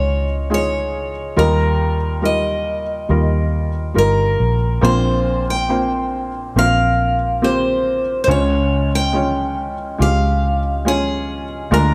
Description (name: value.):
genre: acoustic folk-pop ballad.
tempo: 70 BPM.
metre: 4/4.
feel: straight.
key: unclear.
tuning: A4 = 440 Hz.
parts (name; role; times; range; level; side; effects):
picked steel-string acoustic guitar; melody; 0.0-11.9 s; Ab4 to G5; -22 LUFS; equal; none.
felt-muted upright piano; accompaniment; 0.0-11.9 s; Bb1 to Db5; -23 LUFS; equal; none.
vintage muted fingered electric bass; bass; 0.0-11.9 s; G1 to Eb2; -22 LUFS; equal; none.
room: light reverb.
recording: none.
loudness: -18 LUFS.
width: mono.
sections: 0.0-11.9 A section.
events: none.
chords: 0.0 Dbadd9; 1.4 Ebadd9; 4.8 Bbsus2; 8.3 Db.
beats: 0.51 | 1.37 2.24 3.10 3.96 | 4.83 5.70 6.56 7.42 | 8.28 9.14 10.00 10.86 | 11.71.